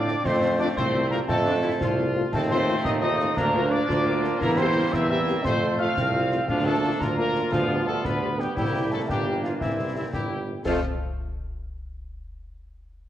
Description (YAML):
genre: military-style march for wind band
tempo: 115 BPM (dotted quarters)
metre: 6/8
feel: straight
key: F major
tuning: A4 = 439 Hz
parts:
  - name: mellow trumpet section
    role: melody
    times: 0.0-10.8 s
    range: E4 to F5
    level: -31 LUFS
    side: left 1 dB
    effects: none
  - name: clear euphonium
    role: second line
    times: 0.0-10.8 s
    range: E3 to F4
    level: -30 LUFS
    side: right 3 dB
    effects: none
  - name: clear woodwind section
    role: second line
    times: 0.0-10.8 s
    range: A3 to C5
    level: -31 LUFS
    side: equal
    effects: none
  - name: mellow piccolo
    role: second line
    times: 0.0-10.8 s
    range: E5 to F6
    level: -32 LUFS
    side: left 3 dB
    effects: none
  - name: warm trombone section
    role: sustained chords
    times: 0.0-10.8 s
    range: E3 to C4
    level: -33 LUFS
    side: right 2 dB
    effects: none
  - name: warm tuba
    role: bass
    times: 0.0-10.8 s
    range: G1 to A2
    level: -27 LUFS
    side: right 2 dB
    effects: none
  - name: mellow French horn section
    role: accompaniment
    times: 0.1-10.8 s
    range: A3 to A4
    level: -33 LUFS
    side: left 5 dB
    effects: none
  - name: concert snare drum, clash cymbals and concert bass drum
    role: drums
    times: 0.1-10.8 s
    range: none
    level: -32 LUFS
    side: left 1 dB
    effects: none
room: wet recital hall reverb, RT60 1.4 s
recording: worn, warbling old tape, cassette tape, warbly pitch drift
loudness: -22 LUFS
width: side -12 dB against mid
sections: 0.0-10.7 A section; 10.7-11.7 B section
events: none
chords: 0.2 F; 2.3 F7/Eb; 3.4 Bb/D; 4.4 C7/E; 5.4 F; 6.5 Bb/D; 7.5 G7/D; 8.6 C7; 10.7 F